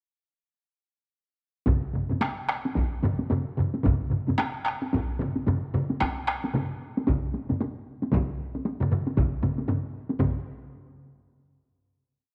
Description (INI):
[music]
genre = japanese traditional, taiko drum ensemble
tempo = 109-122 BPM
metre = 4/4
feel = swing 60% on 16ths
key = none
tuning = none
[part]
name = taiko ensemble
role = percussion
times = 1.7-10.4 s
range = none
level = -33 LUFS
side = equal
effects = none
[part]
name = taiko ensemble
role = percussion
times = 1.7-10.7 s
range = none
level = -32 LUFS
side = equal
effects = none
[part]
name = taiko ensemble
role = percussion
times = 1.7-10.7 s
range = none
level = -33 LUFS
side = equal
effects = none
[part]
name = taiko ensemble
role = percussion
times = 1.7-10.4 s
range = none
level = -32 LUFS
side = equal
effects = none
[sound]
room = wet echo chamber reverb, RT60 2.1 s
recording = none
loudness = -28 LUFS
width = mono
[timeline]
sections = 1.7-10.2 A section; 10.2-12.2 final hit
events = speeding up 1.7-12.2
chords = none